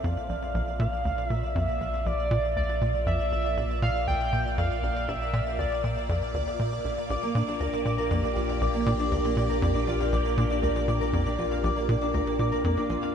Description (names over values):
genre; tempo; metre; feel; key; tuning
ambient; 119 BPM; 4/4; straight; Bb major; A4 = 440 Hz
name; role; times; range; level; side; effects
pulse-width lead; melody; 0.0-6.1 s; D5 to G5; -31 LUFS; equal; chorus, ping-pong delay
phased string machine; sustained chords; 0.0-13.1 s; Bb2 to D5; -34 LUFS; equal; ensemble chorus, phaser
tight sequencer bass; riff; 0.0-13.0 s; Bb1 to Bb2; -30 LUFS; equal; ping-pong delay
warm sub bass; bass; 0.0-13.1 s; Bb1; -32 LUFS; equal; none
pulsing gated texture; texture; 0.0-13.1 s; D5; -37 LUFS; right 4 dB; chorus, built-in reverb
concert harp; arpeggios; 7.1-13.1 s; Bb3 to F5; -28 LUFS; left 1 dB; auto-pan, ping-pong delay
room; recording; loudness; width
moderate huge ambient reverb, RT60 8.3 s; none; -24 LUFS; side -8 dB against mid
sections
0.0-13.1 A section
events
fade-in on string machine 0.0-13.1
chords
0.0 Bb